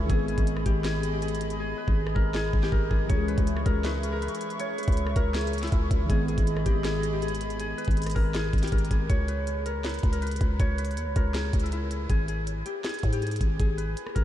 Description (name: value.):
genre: hip hop, trap.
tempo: 160 BPM.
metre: 4/4.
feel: half-time.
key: G# harmonic minor.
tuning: A4 = 444 Hz.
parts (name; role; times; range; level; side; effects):
Celtic harp; melody; 0.0-14.2 s; E4 to C#5; -32 LUFS; left 2 dB; low-pass filter, tape echo.
warbly lo-fi synth keys; accompaniment; 0.0-9.1 s; D#3 to G#4; -35 LUFS; left 1 dB; chorus, low-pass filter.
hollow soft pad; sustained chords; 0.0-9.1 s; G#4 to C#6; -37 LUFS; right 1 dB; chorus.
growling 808-style bass; bass; 0.0-14.2 s; G#1 to G#2; -29 LUFS; equal; none.
trap drum kit; drums; 0.1-14.2 s; hi-hat, kick drum, rim click, snare drum; -28 LUFS; equal; none.
room: light reverb.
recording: none.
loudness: -24 LUFS.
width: side -12 dB against mid.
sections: 0.0-9.1 A section; 9.1-14.2 B section.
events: hi-hats muted 1.6-3.1.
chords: 0.1 G#m; 3.1 C#m; 6.1 G#m; 9.1 C#5; 12.1 G#m.